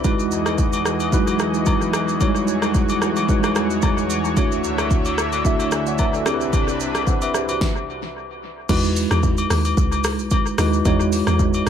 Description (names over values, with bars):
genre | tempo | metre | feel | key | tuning
amapiano | 111 BPM | 4/4 | swing 55% on 16ths | E major | A4 = 441 Hz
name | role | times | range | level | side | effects
tine electric piano | accompaniment | 0.0-11.7 s | F#3 to G#5 | -22 LUFS | right 2 dB | overdrive, fast stereo tremolo, dub echo
lush unison pad | sustained chords | 0.0-7.6 s | C2 to E5 | -26 LUFS | equal | chorus, sidechain pumping
deep house drum kit | drums | 0.0-11.7 s | crash cymbal, hi-hat, kick drum, rim click, shaker, snare drum | -22 LUFS | equal | dub echo
agogo bells and woodblock | percussion | 0.0-11.7 s | none | -27 LUFS | left 6 dB | dub echo
deep log drum bass | bass | 8.7-11.7 s | B1 to E2 | -22 LUFS | equal | none
room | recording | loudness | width
light reverb | echo-heavy mix | -17 LUFS | side -8 dB against mid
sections
0.0-8.7 A section; 8.7-11.7 B section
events
stop 7.6-8.7; drop 8.7-11.7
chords
0.0 Emaj9; 4.4 Dmaj9; 6.3 Cmaj9; 8.7 Emaj9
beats
| 0.04 0.58 1.12 1.67 | 2.21 2.75 3.29 3.83 | 4.37 4.91 5.45 5.99 | 6.53 7.07 7.61 8.15 | 8.69 9.23 9.77 10.31 | 10.85 11.39